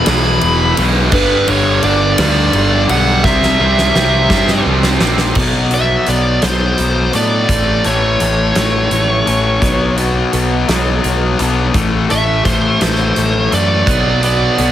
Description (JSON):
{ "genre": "quiet-loud alternative rock", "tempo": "56 BPM (dotted quarters)", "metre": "6/8", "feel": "straight", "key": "unclear", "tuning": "A4 = 440 Hz", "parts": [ { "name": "smooth overdriven lead guitar", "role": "melody", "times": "0.0-14.7 s", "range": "B4 to B5", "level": "-16 LUFS", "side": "right 2 dB", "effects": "slapback echo" }, { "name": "distorted electric guitar", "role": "riff", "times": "0.0-5.4, 13.9-14.7 s", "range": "E2 to C4", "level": "-18 LUFS", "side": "right 9 dB", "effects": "overdrive" }, { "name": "thick fuzz guitar", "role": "riff", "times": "0.0-14.7 s", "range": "E2 to C4", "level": "-17 LUFS", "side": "left 6 dB", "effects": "distortion" }, { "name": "fuzz picked electric bass", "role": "bass", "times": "0.1-14.7 s", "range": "E1 to A2", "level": "-17 LUFS", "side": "equal", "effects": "overdrive" }, { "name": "huge arena drum kit", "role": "drums", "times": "0.1-14.7 s", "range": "crash cymbal, hi-hat, kick drum, ride cymbal, snare drum", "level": "-19 LUFS", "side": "equal", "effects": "none" }, { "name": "electric guitar through a small old amp", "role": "arpeggios", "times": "5.4-14.7 s", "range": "A2 to A4", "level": "-23 LUFS", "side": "right 2 dB", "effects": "tremolo, slapback echo" } ], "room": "studio reverb", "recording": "heavily compressed radio sound, multiband compression", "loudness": "-11 LUFS", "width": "side -11 dB against mid", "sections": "0.0-5.4 A section; 5.4-14.7 B section", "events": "drum fill 3.2-5.4; lead electric guitar solo 5.4-14.7", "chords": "0.0 E5; 1.1 G; 3.2 C; 5.4 Bm; 7.5 A; 9.6 Bm; 11.7 A5; 13.9 Bm" }